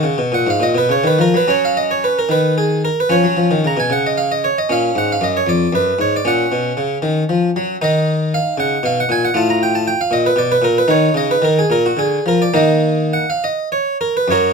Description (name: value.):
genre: classical, baroque-style suite movement for harpsichord.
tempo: 67-79 BPM (dotted quarters).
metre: 6/8.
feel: rubato.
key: F# major, Eb minor from 7.8 s.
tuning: A4 = 440 Hz.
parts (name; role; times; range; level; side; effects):
harpsichord; solo; 0.0-14.5 s; F2 to A#5; -14 LUFS; equal; none.
room: light reverb.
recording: close, detailed microphones.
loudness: -14 LUFS.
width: side -5 dB against mid.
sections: 0.0-1.5 A section; 1.5-14.3 B section.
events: none.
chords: 0.0 F#; 1.5 F#5; 2.3 N.C.; 3.1 C#; 4.7 F#; 5.5 Fdim7; 6.3 F#5; 7.8 Eb5; 9.3 F/A; 10.1 Bmmaj7/A#; 10.9 Bmaj13; 11.7 Bb; 12.5 Eb5.